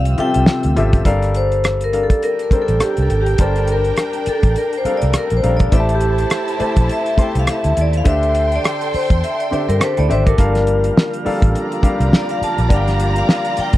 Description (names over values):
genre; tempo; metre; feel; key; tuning
lush 1970s-style soul; 103 BPM; 4/4; swing 58% on 16ths; G dorian; A4 = 440 Hz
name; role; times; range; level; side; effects
vibraphone with medium hard mallets; melody; 0.0-13.8 s; G4 to A5; -20 LUFS; left 1 dB; none
tonewheel organ; sustained chords; 0.0-1.0, 10.4-13.8 s; C3 to E5; -25 LUFS; right 2 dB; slow rotary speaker
vintage muted fingered electric bass; bass; 0.0-13.8 s; G1 to G2; -18 LUFS; equal; none
cloth-damped thuddy drum kit; drums; 0.1-13.8 s; hi-hat, kick drum, rim click, snare drum; -15 LUFS; equal; none
warm baby grand piano; accompaniment; 0.2-13.8 s; C3 to C6; -22 LUFS; left 2 dB; none
warm studio violin section; second line; 2.2-13.8 s; D4 to C6; -26 LUFS; right 2 dB; none
electric guitar through a small old amp; riff; 9.8-10.5 s; D4 to D5; -26 LUFS; right 6 dB; warbly pitch drift
room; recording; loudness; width
little or no reverb; dry, close 1970s-style studio recording; -14 LUFS; side -15 dB against mid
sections
0.0-1.1 A section; 1.1-13.8 B section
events
vibraphone solo 1.1-13.8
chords
0.0 Fmaj9/C; 1.1 Gm9; 5.7 Am7; 8.1 D9sus4; 10.4 Gm9